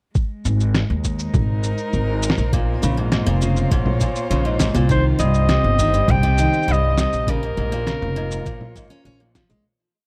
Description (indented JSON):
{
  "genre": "folktronica",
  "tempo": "101 BPM",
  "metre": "4/4",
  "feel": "straight",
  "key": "Bb dorian",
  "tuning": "A4 = 440 Hz",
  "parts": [
    { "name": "warm string quartet", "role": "sustained chords", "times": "0.1-9.7 s", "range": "Ab3 to Eb5", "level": "-31 LUFS", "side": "equal", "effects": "none" },
    { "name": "electronic cabasa, snare drum and congas", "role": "drums", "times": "0.1-9.6 s", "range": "none", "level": "-26 LUFS", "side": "equal", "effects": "none" },
    { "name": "electronic kick drum", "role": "drums", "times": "0.2-9.5 s", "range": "none", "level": "-24 LUFS", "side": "equal", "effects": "none" },
    { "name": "upright bass", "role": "bass", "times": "0.5-9.6 s", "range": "F1 to Eb2", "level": "-23 LUFS", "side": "equal", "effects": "none" },
    { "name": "picked steel-string acoustic guitar", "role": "arpeggios", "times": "2.5-9.6 s", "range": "G2 to Db4", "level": "-27 LUFS", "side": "equal", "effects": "none" },
    { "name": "bright clarinet", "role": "melody", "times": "4.9-9.4 s", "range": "Bb4 to G5", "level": "-24 LUFS", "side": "equal", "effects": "none" }
  ],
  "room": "little or no reverb",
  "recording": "dry, close 1970s-style studio recording",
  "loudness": "-19 LUFS",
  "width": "mono",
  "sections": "0.1-9.7 groove",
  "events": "fade-out 6.5-9.7",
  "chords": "0.1 Ab; 2.5 Bbm7; 4.9 Cm; 7.3 Bbm7"
}